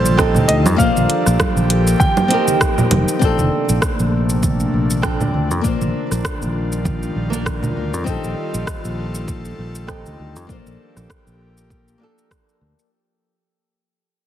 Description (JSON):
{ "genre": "sunset chillout", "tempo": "99 BPM", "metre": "4/4", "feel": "swing 56% on 16ths", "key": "Bb major", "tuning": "A4 = 440 Hz", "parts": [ { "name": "warm baby grand piano", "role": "melody", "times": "0.0-2.6 s", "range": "C5 to G5", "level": "-22 LUFS", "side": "equal", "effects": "digital delay" }, { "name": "nylon-string guitar", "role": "accompaniment", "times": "0.0-12.9 s", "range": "Bb3 to C5", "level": "-22 LUFS", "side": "moving between left 6 dB and right 4 dB", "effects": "auto-pan, digital delay" }, { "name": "airy breathy pad", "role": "sustained chords", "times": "0.0-12.9 s", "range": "C3 to A4", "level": "-25 LUFS", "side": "left 1 dB", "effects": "chorus" }, { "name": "fingered electric bass", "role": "bass", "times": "0.0-12.7 s", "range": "F1 to F2", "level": "-20 LUFS", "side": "equal", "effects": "none" }, { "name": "deep house drum kit", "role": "drums", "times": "0.1-12.9 s", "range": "congas, hi-hat, rim click, shaker", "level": "-22 LUFS", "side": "right 2 dB", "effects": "none" }, { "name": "congas", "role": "percussion", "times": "0.1-7.9 s", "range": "none", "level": "-24 LUFS", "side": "right 3 dB", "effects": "none" }, { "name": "electronic kick drum", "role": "drums", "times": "0.2-12.4 s", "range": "none", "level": "-22 LUFS", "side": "equal", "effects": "none" } ], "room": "moderate plate reverb, RT60 1.7 s, studio reverb", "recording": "heavily compressed radio sound, multiband compression", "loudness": "-15 LUFS", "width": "side -11 dB against mid", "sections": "0.0-3.2 A section; 3.2-12.9 B section", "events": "fade-out 3.2-12.9", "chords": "0.0 F9/Bb; 0.8 Gm9/Bb; 2.0 F9sus4; 3.2 Bbmaj9; 5.6 Ebmaj9/Bb; 8.1 F9/Bb; 10.5 Gm9/Bb" }